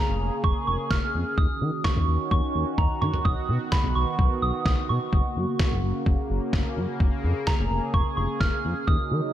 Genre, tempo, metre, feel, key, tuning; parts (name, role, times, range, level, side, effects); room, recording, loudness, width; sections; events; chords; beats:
synth-pop; 128 BPM; 4/4; straight; A4 = 440 Hz
soft synth bell; melody; 0.0-9.3 s; Bb5 to F6; -29 LUFS; right 3 dB; chorus, ping-pong delay
sweeping resonant pad; sustained chords; 0.0-9.3 s; Db3 to Ab4; -30 LUFS; right 1 dB; chorus
smooth gliding synth bass; bass; 0.1-9.2 s; F1 to Eb3; -26 LUFS; equal
lo-fi sampler-style drum kit; drums; 0.4-9.0 s; kick drum, snare drum, toms; -25 LUFS; equal
light reverb; -22 LUFS; side -12 dB against mid
0.0-9.3 A section
drum fill 2.8-3.3
0.0 Bbm7/F; 1.4 Ebm7; 3.3 B; 5.1 Gb; 7.0 Bbm7/F
0.44 0.91 | 1.38 1.85 2.32 2.78 | 3.25 3.72 4.19 4.66 | 5.13 5.60 6.07 6.53 | 7.00 7.47 7.94 8.41 | 8.88